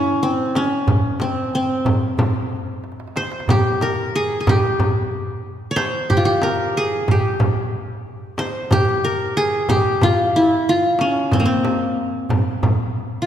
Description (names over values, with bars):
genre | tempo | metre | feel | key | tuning
Arabic maqam ensemble | 92 BPM | 4/4 | straight | C maqam hijaz | A4 = 438 Hz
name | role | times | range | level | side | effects
qanun | melody | 0.0-13.3 s | Bb3 to Db5+25c | -19 LUFS | equal | none
darbuka | percussion | 0.1-12.9 s | none | -24 LUFS | right 2 dB | none
frame drum | percussion | 0.6-12.8 s | none | -23 LUFS | left 1 dB | none
room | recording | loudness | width
wet concert hall reverb, RT60 2.3 s | recorded in a church or concert hall | -17 LUFS | side -10 dB against mid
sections
0.0-13.3 A section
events
drum fill 2.8-3.5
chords
none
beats
0.23 | 0.88 1.53 2.19 2.84 | 3.49 4.14 4.79 5.45 | 6.10 6.75 7.41 8.06 | 8.71 9.36 10.02 10.67 | 11.32 11.97 12.63